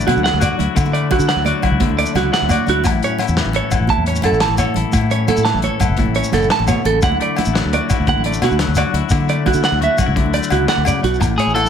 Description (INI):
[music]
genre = highlife guitar band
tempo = 115 BPM (dotted quarters)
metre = 12/8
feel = straight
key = unclear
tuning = A4 = 440 Hz
[part]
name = clean electric guitar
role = accompaniment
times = 0.0-11.7 s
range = A2 to A4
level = -21 LUFS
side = left 10 dB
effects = none
[part]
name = clean electric guitar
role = arpeggios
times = 0.0-11.5 s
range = F#4 to A5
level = -19 LUFS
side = right 7 dB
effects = tape echo
[part]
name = fingered electric bass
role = bass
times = 0.0-11.7 s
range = F#1 to D3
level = -20 LUFS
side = equal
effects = none
[part]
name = warm soul drum kit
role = drums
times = 0.1-11.6 s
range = hi-hat, kick drum, snare drum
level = -22 LUFS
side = left 1 dB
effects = none
[part]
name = agogo bells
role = percussion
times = 0.1-11.7 s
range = none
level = -26 LUFS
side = left 7 dB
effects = none
[part]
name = congas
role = percussion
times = 0.1-11.7 s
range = none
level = -24 LUFS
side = right 6 dB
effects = none
[part]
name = shekere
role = percussion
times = 0.2-11.7 s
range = none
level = -24 LUFS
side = left 2 dB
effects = none
[part]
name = electric guitar at the edge of break-up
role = melody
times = 11.4-11.7 s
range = G#4 to A4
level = -16 LUFS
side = equal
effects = none
[sound]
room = light reverb, small room ambience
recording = none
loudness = -14 LUFS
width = side -8 dB against mid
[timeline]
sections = 0.0-11.2 A section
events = drum fill 10.5-11.2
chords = 0.0 Dadd9; 2.9 A; 7.0 Dadd9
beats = 0.25 | 0.77 1.29 1.81 2.33 | 2.85 3.37 3.89 4.41 | 4.94 5.46 5.98 6.50 | 7.03 7.55 8.07 8.59 | 9.12 9.64 10.16 10.69 | 11.21